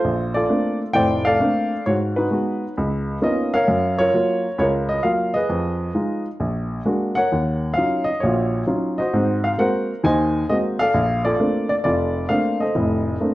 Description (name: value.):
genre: solo jazz.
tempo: 132 BPM.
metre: 4/4.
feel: swing 68% on 8ths.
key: unclear.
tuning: A4 = 438 Hz.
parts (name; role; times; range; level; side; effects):
warm upright piano; solo; 0.0-13.3 s; F1 to Ab5; -18 LUFS; equal; slapback echo.
room: light reverb, small room ambience.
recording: dry, close 1970s-style studio recording.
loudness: -18 LUFS.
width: side -16 dB against mid.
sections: 0.0-13.3 A section.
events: none.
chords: 0.0 Bbmaj9; 1.9 Abm7; 2.8 Db13; 3.7 Gbmaj7; 5.5 Fm7b5; 6.4 Bb7alt; 7.3 Ebm9; 9.1 Ab9; 10.9 Bbmaj9.